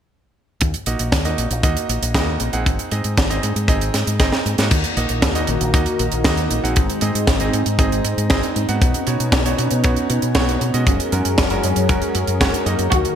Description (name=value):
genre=italo disco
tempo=117 BPM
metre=4/4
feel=straight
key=Eb minor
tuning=A4 = 440 Hz
part: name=fingered electric bass with an envelope filter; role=bass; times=0.6-13.0 s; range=Gb1 to B2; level=-22 LUFS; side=equal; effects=none
part: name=kick drum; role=drums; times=0.6-13.0 s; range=none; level=-20 LUFS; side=left 1 dB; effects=none
part: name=tight funk drum kit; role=drums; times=0.6-13.2 s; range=crash cymbal, hi-hat, snare drum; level=-22 LUFS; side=right 1 dB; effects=gated reverb
part: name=clear electric grand piano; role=stabs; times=0.9-13.1 s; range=Ab3 to Gb5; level=-24 LUFS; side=right 3 dB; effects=vintage 12-bit sampler grit, low-pass filter, ping-pong delay
part: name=warm analog pad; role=sustained chords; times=4.7-13.2 s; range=Eb3 to Bb4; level=-23 LUFS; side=left 1 dB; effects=chorus
part: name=dark symphonic violin section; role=melody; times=12.9-13.2 s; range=Gb4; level=-19 LUFS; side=left 1 dB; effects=none
room=moderate lush hall reverb, RT60 2.3 s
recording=bright 1980s-style digital production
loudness=-16 LUFS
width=side -9 dB against mid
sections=0.6-4.7 A section; 4.7-13.2 B section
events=filter sweep on electric grand piano 0.6-4.7; drum fill 3.9-4.7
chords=0.6 Ebm; 2.7 Ab; 4.7 Ebm; 6.8 Ab; 8.8 Badd9; 10.9 Gbadd9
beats=| 0.61 1.12 1.64 2.15 | 2.66 3.17 3.69 4.20 | 4.71 5.23 5.74 6.25 | 6.76 7.28 7.79 8.30 | 8.82 9.33 9.84 10.35 | 10.87 11.38 11.89 12.41 | 12.92